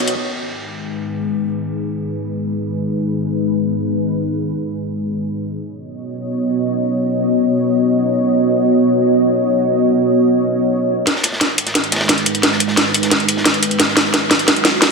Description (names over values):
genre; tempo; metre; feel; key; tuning
dark technical drum and bass; free time; none; none; G# minor; A4 = 440 Hz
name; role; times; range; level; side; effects
dark analog pad; sustained chords; 0.0-14.9 s; G#3 to D#5; -17 LUFS; equal; chorus
drum and bass drum kit; drums; 0.1, 11.1-14.9 s; hi-hat, snare drum; -14 LUFS; equal; none
crunchy breakbeat drum kit; drums; 11.1-14.9 s; ride cymbal, snare drum; -24 LUFS; equal; high-pass filter on cymbals, high-pass filter on snare, high-pass filter on room
room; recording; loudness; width
moderate lush hall reverb, RT60 1.9 s; dense, heavily limited modern master, high-pass filter; -14 LUFS; side -4 dB against mid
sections
0.2-11.1 A section; 11.1-14.9 B section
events
build-up 11.1-14.9; drum fill 11.1-14.9; filter sweep on analog synth pad 11.1-14.9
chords
0.2 G#m; 5.6 B; 11.1 G#m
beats
free time